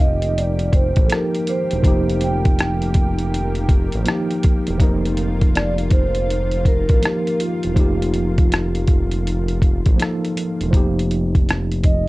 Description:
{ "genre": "lo-fi hip hop", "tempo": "81 BPM", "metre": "4/4", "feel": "swing 66% on 16ths", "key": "unclear", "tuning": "A4 = 440 Hz", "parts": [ { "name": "vibraphone with soft mallets", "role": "melody", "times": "0.0-12.1 s", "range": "F4 to G5", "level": "-24 LUFS", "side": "right 1 dB", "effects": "low-pass filter" }, { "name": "mellow tine electric piano", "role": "accompaniment", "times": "0.0-12.1 s", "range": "F3 to Bb4", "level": "-23 LUFS", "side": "right 1 dB", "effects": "medium stereo tremolo, low-pass filter" }, { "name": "lush unison pad", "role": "sustained chords", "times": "0.0-10.7 s", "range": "Eb3 to G4", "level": "-32 LUFS", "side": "equal", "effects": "chorus, low-pass filter" }, { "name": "smooth synth bass", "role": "bass", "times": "0.0-12.1 s", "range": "E1 to A1", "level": "-22 LUFS", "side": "equal", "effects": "none" }, { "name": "lo-fi sampler-style drum kit", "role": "drums", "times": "0.2-12.1 s", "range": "hi-hat, kick drum, rim click", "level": "-17 LUFS", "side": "equal", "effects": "none" } ], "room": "little or no reverb", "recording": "cassette tape", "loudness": "-16 LUFS", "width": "side -20 dB against mid", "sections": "0.0-10.7 A section; 10.7-12.1 B section", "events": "none", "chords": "0.0 F9sus4" }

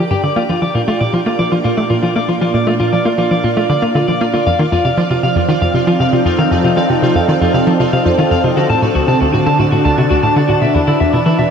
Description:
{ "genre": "ambient, sequencer-driven space music", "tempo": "117 BPM", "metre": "4/4", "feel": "straight", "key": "unclear", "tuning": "A4 = 440 Hz", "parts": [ { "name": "lush unison pad", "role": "sustained chords", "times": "0.0-11.5 s", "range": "Bb2 to A5", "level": "-17 LUFS", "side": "equal", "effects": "chorus, phaser" }, { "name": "electric guitar at the edge of break-up", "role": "arpeggios", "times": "0.0-11.5 s", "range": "E4 to A5", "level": "-17 LUFS", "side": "moving between left 4 dB and right 2 dB", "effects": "auto-pan, ping-pong delay" }, { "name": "hollow square pluck", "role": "riff", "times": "0.0-11.4 s", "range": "D2 to Bb3", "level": "-16 LUFS", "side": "equal", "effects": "chorus, ping-pong delay" }, { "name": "pulsing gated texture", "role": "texture", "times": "0.0-11.5 s", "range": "D5", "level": "-23 LUFS", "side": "right 7 dB", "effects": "chorus, built-in reverb" } ], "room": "wet shimmer reverb, RT60 8.1 s", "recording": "none", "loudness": "-11 LUFS", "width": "side -7 dB against mid", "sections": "0.0-11.5 A section", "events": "fade-in on analog synth pad 0.0-11.5", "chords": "0.4 Bb; 4.5 F7; 8.6 D; 10.6 E7(no3)" }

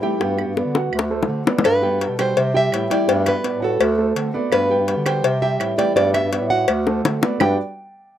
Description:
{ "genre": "latin, Cuban son and guajira", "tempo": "167 BPM", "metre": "4/4", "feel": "straight", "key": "G major", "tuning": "A4 = 440 Hz", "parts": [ { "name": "fingerpicked old ladder-braced acoustic guitar", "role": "accompaniment", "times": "0.0-7.5 s", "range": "D3 to F#4", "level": "-26 LUFS", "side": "left 3 dB", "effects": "none" }, { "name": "dark baby grand piano", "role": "arpeggios", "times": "0.0-7.6 s", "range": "G3 to G5", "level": "-24 LUFS", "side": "right 4 dB", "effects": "none" }, { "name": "bongos and cowbell", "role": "percussion", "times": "0.0-7.5 s", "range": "none", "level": "-21 LUFS", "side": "left 6 dB", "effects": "none" }, { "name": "mellow bass clarinet", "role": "bass", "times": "0.2-7.6 s", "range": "D2 to D3", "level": "-23 LUFS", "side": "equal", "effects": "none" }, { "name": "claves", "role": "percussion", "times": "0.4-7.5 s", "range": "none", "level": "-30 LUFS", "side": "right 7 dB", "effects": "none" }, { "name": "nylon-string guitar", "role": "melody", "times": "1.7-7.6 s", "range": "A4 to G5", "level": "-21 LUFS", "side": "right 2 dB", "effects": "none" } ], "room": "light reverb", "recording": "rough home demo mix", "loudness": "-17 LUFS", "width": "side -11 dB against mid", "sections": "0.0-1.6 A section; 1.6-7.4 B section", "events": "drum fill 0.7-1.6, 6.9-7.4", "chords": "0.2 Gmaj7; 0.9 D7; 1.6 Gmaj7; 2.4 C6; 3.1 Gmaj7; 3.8 D7; 4.5 Gmaj7; 5.2 C6; 6.0 Gmaj7; 6.7 D7; 7.4 Gmaj7" }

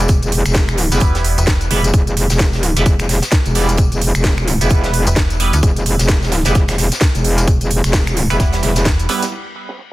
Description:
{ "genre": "bass house", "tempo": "130 BPM", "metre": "4/4", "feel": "swing 58% on 16ths", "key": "E minor", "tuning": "A4 = 440 Hz", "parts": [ { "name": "metallic wobble bass", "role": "bass", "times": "0.0-8.8 s", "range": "E1", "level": "-16 LUFS", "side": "equal", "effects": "chorus, overdrive, sidechain pumping" }, { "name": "electronic kick drum", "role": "drums", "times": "0.1-9.0 s", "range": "none", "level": "-16 LUFS", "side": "equal", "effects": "none" }, { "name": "garage drum kit", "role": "drums", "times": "0.1-9.4 s", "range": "crash cymbal, finger snaps, hi-hat, snare drum", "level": "-21 LUFS", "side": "right 1 dB", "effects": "low-pass filter on hats, low-pass filter on snare, low-pass filter on cymbals, low-pass filter on room" }, { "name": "tight metal drum kit", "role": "drums", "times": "0.1-9.9 s", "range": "hi-hat, snare drum", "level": "-27 LUFS", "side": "right 2 dB", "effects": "sidechain pumping on hats, high-pass filter on hats, low-pass filter on hats, high-pass filter on snare, low-pass filter on snare, high-pass filter on room, low-pass filter on room" }, { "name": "tambourine", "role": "percussion", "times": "0.1-9.3 s", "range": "none", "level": "-28 LUFS", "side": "left 5 dB", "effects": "none" }, { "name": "band-passed chord stab", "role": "stabs", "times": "0.9-9.2 s", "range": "G3 to D5", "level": "-23 LUFS", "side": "right 4 dB", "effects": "phaser, sidechain pumping, tape echo" }, { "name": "metallic FM bass", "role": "bass", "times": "1.0-1.7, 5.1-5.6, 8.4-9.1 s", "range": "E1 to D2", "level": "-16 LUFS", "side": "equal", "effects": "tube saturation, sidechain pumping" } ], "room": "studio reverb", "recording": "dense, heavily limited modern master", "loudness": "-12 LUFS", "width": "side -17 dB against mid", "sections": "0.0-9.3 A section", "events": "drop 0.0-9.3", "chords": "0.0 Em; 9.3 N.C." }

